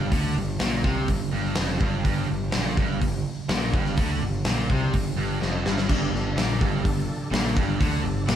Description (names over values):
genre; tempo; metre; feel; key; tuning
hard rock; 125 BPM; 4/4; straight; G minor; A4 = 441 Hz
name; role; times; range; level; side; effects
overdriven semi-hollow guitar; riff; 0.0-8.4 s; F2 to D3; -30 LUFS; left 6 dB; none
tight distorted guitar; riff; 0.0-8.4 s; F2 to D3; -30 LUFS; right 5 dB; distortion
fuzz picked electric bass; bass; 0.0-8.4 s; F1 to D2; -29 LUFS; equal; overdrive
big rock drum kit; drums; 0.1-8.4 s; crash cymbal, hi-hat, kick drum, snare drum; -25 LUFS; right 1 dB; none
overdriven tonewheel organ; sustained chords; 5.9-8.4 s; G3 to A4; -36 LUFS; equal; slow rotary speaker, chorus vibrato
room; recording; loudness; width
moderate stone room reverb, RT60 1.2 s; band playing live in one room; -22 LUFS; side -10 dB against mid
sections
0.0-8.4 A section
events
drum fill 5.4-5.9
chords
0.0 Gm